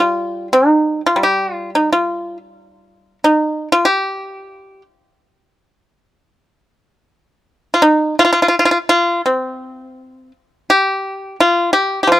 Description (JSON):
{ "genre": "chinese traditional, Chinese solo plucked strings", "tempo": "78-97 BPM", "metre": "4/4", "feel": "rubato", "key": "unclear", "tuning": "A4 = 435 Hz", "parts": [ { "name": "pipa", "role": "solo", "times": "0.0-12.2 s", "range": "F3 to G4", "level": "-13 LUFS", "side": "equal", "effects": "none" } ], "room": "little or no reverb", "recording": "dry, close 1970s-style studio recording", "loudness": "-13 LUFS", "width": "side -14 dB against mid", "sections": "0.0-10.7 A section; 10.7-12.2 B section", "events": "none", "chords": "none", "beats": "0.49 1.19 1.88 | 2.54 3.20 3.85 4.52 | 5.18 5.82 6.46 7.14 | 7.82 8.51 9.21 9.95 | 10.69 11.39 12.09" }